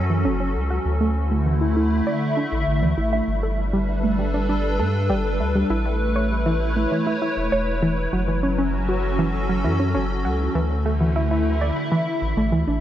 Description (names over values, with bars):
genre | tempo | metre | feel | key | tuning
IDM | 99 BPM | 4/4 | straight | unclear | A4 = 440 Hz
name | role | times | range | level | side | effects
hollow soft pad | sustained chords | 0.0-12.8 s | D3 to E5 | -24 LUFS | equal | ensemble chorus, vintage 12-bit sampler grit
warbly dusty pluck | arpeggios | 0.0-12.7 s | E3 to E5 | -24 LUFS | right 1 dB | chorus, digital delay
round analog bass | bass | 0.0-12.8 s | E1 to G2 | -23 LUFS | equal | none
room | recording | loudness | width
moderate huge ambient reverb, RT60 6.8 s | none | -19 LUFS | side -12 dB against mid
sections
0.0-12.8 A section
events
none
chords
0.0 F#m; 0.9 Dsus2; 3.3 Gadd9; 5.7 A; 8.1 F#m7; 10.6 Dsus2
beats
0.25 | 0.86 1.46 2.07 2.67 | 3.28 3.89 4.49 5.10 | 5.70 6.31 6.92 7.52 | 8.13 8.73 9.34 9.95 | 10.55 11.16 11.77 12.37